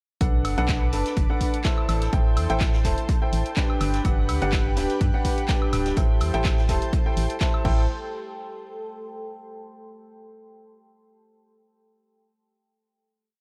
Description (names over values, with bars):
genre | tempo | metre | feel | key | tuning
piano house | 125 BPM | 4/4 | swing 54% on 16ths | A dorian | A4 = 440 Hz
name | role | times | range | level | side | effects
analog string pad | sustained chords | 0.2-7.9 s | G4 to G6 | -39 LUFS | equal | ensemble chorus, vintage 12-bit sampler grit, sidechain pumping
clear baby grand piano | riff | 0.2-7.8 s | D4 to A5 | -30 LUFS | equal | sidechain pumping, dub echo
organ-like FM bass | bass | 0.2-7.9 s | D1 to G2 | -27 LUFS | equal | sidechain pumping
electronic kick drum | drums | 0.2-7.8 s | none | -26 LUFS | equal | none
punchy analog drum machine | drums | 0.2-7.8 s | crash cymbal, handclaps, hi-hat, woodblock | -36 LUFS | equal | dub echo
vintage brush drum kit | drums | 0.2-7.5 s | hi-hat, snare drum | -42 LUFS | equal | none
deep dark ambient pad | texture | 1.5-9.8 s | G4 to C6 | -40 LUFS | equal | chorus, built-in reverb, sidechain pumping
room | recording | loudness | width
light reverb, small room ambience | echo-heavy mix | -23 LUFS | mono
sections
0.2-7.9 drop; 7.9-9.8 final note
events
drop 0.2-7.9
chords
0.2 Bm7; 1.9 Am7; 3.8 Gmaj7; 6.0 Am7